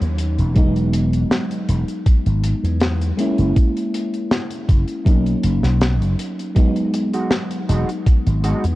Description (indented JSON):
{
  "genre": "vaporwave",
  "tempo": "80 BPM",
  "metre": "4/4",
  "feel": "swing 53% on 16ths",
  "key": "E lydian",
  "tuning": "A4 = 440 Hz",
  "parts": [
    { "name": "mellow FM electric piano", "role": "accompaniment", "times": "0.0-8.8 s", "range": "F#3 to E4", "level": "-22 LUFS", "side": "equal", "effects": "wide subtle chorus, tape echo" },
    { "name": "slap bass with an envelope filter", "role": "bass", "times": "0.0-8.8 s", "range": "E1 to E2", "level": "-18 LUFS", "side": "equal", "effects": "none" },
    { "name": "modern studio drum kit", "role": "drums", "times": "0.0-8.8 s", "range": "hi-hat, snare drum", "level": "-24 LUFS", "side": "left 1 dB", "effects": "none" },
    { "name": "electronic kick drum", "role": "drums", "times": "0.6-8.2 s", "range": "none", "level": "-14 LUFS", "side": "equal", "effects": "none" },
    { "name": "mellow electric guitar", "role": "riff", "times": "6.9-8.6 s", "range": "G#3 to F#4", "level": "-26 LUFS", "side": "right 2 dB", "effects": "analog chorus, tape echo" }
  ],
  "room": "small room ambience",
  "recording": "dark, warm production, cassette tape",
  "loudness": "-16 LUFS",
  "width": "side -17 dB against mid",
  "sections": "0.0-8.8 A section",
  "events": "none",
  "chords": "0.0 Bmaj7 (rootless); 0.6 Emaj9; 3.2 F#7; 5.1 Bmaj7; 6.6 Emaj9 (rootless)"
}